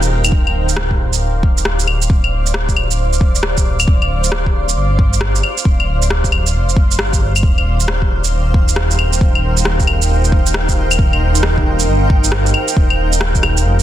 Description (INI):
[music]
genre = future garage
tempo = 135 BPM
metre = 4/4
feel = swing 65% on 16ths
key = D phrygian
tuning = A4 = 438 Hz
[part]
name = granular cloud pad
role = sustained chords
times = 0.0-13.8 s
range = Eb4 to G5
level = -21 LUFS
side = right 1 dB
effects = built-in reverb, sidechain pumping
[part]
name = dark detuned saw bass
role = bass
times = 0.0-13.8 s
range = D1 to G1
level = -16 LUFS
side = equal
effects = tube saturation, sidechain pumping
[part]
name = electronic shaker, claves and rim click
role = drums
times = 0.0-13.8 s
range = none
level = -18 LUFS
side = equal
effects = none
[part]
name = electronic kick drum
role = drums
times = 0.3-13.4 s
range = none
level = -14 LUFS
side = equal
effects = none
[sound]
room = little or no reverb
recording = dense, heavily limited modern master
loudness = -12 LUFS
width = side -12 dB against mid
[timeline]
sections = 0.3-13.8 A section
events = break 0.0-0.3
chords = 0.3 Dm7; 7.4 Eb69